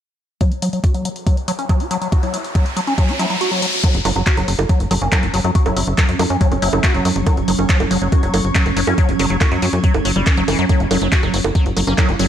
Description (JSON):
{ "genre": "psychedelic trance", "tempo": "140 BPM", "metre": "4/4", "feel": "straight", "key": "unclear", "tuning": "A4 = 438 Hz", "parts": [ { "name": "liquid acid bass", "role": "riff", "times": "0.4-12.3 s", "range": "E3 to G4", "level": "-21 LUFS", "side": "left 1 dB", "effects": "phaser, auto-pan, cassette tape, sidechain pumping, analog delay" }, { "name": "big-room dance drum kit", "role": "drums", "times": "0.4-12.3 s", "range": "bongos, handclaps, hi-hat", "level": "-22 LUFS", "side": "right 2 dB", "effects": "small room ambience" }, { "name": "electronic kick drum", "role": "drums", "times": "0.4-12.1 s", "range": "none", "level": "-16 LUFS", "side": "equal", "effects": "overdrive, small room ambience" }, { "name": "riser", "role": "sound effects", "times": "1.5-3.8 s", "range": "none", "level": "-24 LUFS", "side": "left 1 dB", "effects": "none" }, { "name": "resonant blip pluck", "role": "second line", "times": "2.2-6.8, 11.9-12.0 s", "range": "A#3 to E4", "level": "-30 LUFS", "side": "left 1 dB", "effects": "phaser, lush chorus, sidechain pumping, high-pass filter, tape echo" }, { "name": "swarming drone", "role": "sustained chords", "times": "4.9-12.3 s", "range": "F#3 to E4", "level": "-23 LUFS", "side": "right 2 dB", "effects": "built-in reverb, sidechain pumping" }, { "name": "tight sequencer bass", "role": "bass", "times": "3.9-12.3 s", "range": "F#1 to F#2", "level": "-20 LUFS", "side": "equal", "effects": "tube saturation" } ], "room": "light reverb", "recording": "none", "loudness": "-14 LUFS", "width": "side -10 dB against mid", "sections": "0.4-3.8 A section; 3.8-12.3 B section", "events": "filter sweep on acid bass 0.4-3.8, 3.8-12.3; riser 1.5-3.8; kick drops out 3.4-3.8", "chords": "0.4 F#5" }